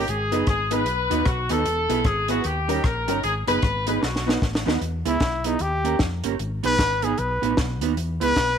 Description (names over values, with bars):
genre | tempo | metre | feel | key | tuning
ska | 152 BPM | 4/4 | swing 61% on 8ths | E major | A4 = 438 Hz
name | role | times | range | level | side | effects
bright horn section | melody | 0.0-4.4 s | F#4 to B4 | -24 LUFS | left 2 dB | slapback echo
mellow electric guitar | accompaniment | 0.0-8.3 s | G3 to B4 | -27 LUFS | right 12 dB | none
tack piano | stabs | 0.0-4.8 s | B3 to B4 | -31 LUFS | left 14 dB | none
hollow-body short-scale fingered electric bass | bass | 0.0-8.6 s | E1 to F2 | -28 LUFS | left 1 dB | none
compact cocktail drum kit | drums | 0.1-8.5 s | hi-hat, kick drum, rim click, snare drum | -25 LUFS | equal | none
breathy trumpet | melody | 5.1-8.6 s | D#4 to B4 | -23 LUFS | left 2 dB | slapback echo
room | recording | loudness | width
light reverb, studio reverb | 1960s-style stereo with parts hard left and right | -20 LUFS | side -8 dB against mid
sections
0.0-4.8 A section; 4.8-8.6 B section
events
drum fill 4.0-4.8; trumpet solo 4.8-8.6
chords
0.1 G#m; 0.9 B; 1.7 E; 2.4 D#7; 3.2 G#m; 4.0 B; 4.8 E; 5.6 D#7; 6.4 G#m; 7.2 B; 8.0 E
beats
| 0.08 0.47 0.87 1.26 | 1.66 2.05 2.45 2.84 | 3.24 3.63 4.03 4.42 | 4.81 5.21 5.60 6.00 | 6.39 6.79 7.18 7.58 | 7.97 8.37